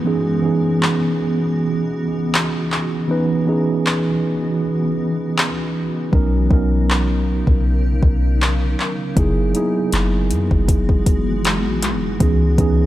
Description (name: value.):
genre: contemporary R&B.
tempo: 79 BPM.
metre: 4/4.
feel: swing 54% on 16ths.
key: C# dorian.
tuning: A4 = 439 Hz.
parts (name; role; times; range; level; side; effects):
mellow tine electric piano; accompaniment; 0.0-12.9 s; E3 to B4; -19 LUFS; right 2 dB; slow stereo tremolo.
granular cloud pad; sustained chords; 0.0-12.9 s; C#2 to A#4; -26 LUFS; left 1 dB; built-in reverb, sidechain pumping.
smooth R&B drum kit; drums; 0.8-12.8 s; handclaps, hi-hat, kick drum; -20 LUFS; left 1 dB; none.
soft 808-style bass; bass; 6.1-12.9 s; F#1 to F#2; -19 LUFS; equal; none.
room: light reverb.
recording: dark, warm production.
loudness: -16 LUFS.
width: side -14 dB against mid.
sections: 0.0-12.9 A section.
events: break 0.0-6.1.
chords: 0.1 C#m9; 6.1 Bmaj9; 9.2 F#13sus4; 12.2 C#m9.